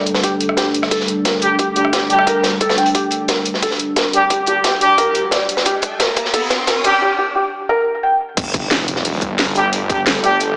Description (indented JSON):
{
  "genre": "dark technical drum and bass",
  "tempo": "177 BPM",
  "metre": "4/4",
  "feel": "straight",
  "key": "unclear",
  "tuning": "A4 = 437 Hz",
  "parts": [
    { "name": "deep dark ambient pad", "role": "sustained chords", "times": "0.0-10.6 s", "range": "G3 to A4", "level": "-24 LUFS", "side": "equal", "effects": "chorus, built-in reverb, sidechain pumping" },
    { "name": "crunchy breakbeat drum kit", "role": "drums", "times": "0.1-10.5 s", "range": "hi-hat, snare drum", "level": "-20 LUFS", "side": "equal", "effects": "high-pass filter on hats, high-pass filter on snare, high-pass filter on room" },
    { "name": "drum and bass drum kit", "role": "drums", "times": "0.1-10.5 s", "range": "crash cymbal, hi-hat, rim click, snare drum", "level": "-20 LUFS", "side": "equal", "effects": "high-pass filter on hats, high-pass filter on snare, high-pass filter on toms, high-pass filter on cymbals, high-pass filter on room" },
    { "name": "felt-muted upright piano", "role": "arpeggios", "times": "0.2-8.1 s", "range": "G4 to G5", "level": "-19 LUFS", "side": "equal", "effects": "sidechain pumping, low-pass filter, tape echo" },
    { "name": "electronic kick drum", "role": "drums", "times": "0.2-10.0 s", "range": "none", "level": "-20 LUFS", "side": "equal", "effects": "high-pass filter on kick" },
    { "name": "mellow brass ensemble", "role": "stabs", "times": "1.4-6.9, 9.6-10.4 s", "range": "G3 to G4", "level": "-16 LUFS", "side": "equal", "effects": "low-pass filter, tape echo" },
    { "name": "riser and impact", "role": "sound effects", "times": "4.4-9.7 s", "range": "none", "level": "-26 LUFS", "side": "equal", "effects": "none" },
    { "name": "snarling distorted saw bass", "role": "bass", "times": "8.4-10.6 s", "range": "F1 to G1", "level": "-22 LUFS", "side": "equal", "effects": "tube saturation" }
  ],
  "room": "wet digital room reverb, RT60 1.1 s, small room ambience",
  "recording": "high-pass filter, small speaker sound",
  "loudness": "-14 LUFS",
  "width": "side -32 dB against mid",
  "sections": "0.0-8.4 A section; 8.4-10.6 B section",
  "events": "build-up 0.0-8.4; filter sweep on felt piano 0.0-8.4; drum fill 2.9-7.0; riser 4.4-7.0; drop 8.4-10.6; impact 8.4-9.7",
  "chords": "0.0 G5",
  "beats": "| 0.24 0.57 0.91 1.25 | 1.59 1.93 2.27 2.61 | 2.95 3.29 3.63 3.96 | 4.30 4.64 4.98 5.32 | 5.66 6.00 6.34 6.68 | 7.01 7.35 7.69 8.03 | 8.37 8.71 9.05 9.39 | 9.73 10.07 10.40"
}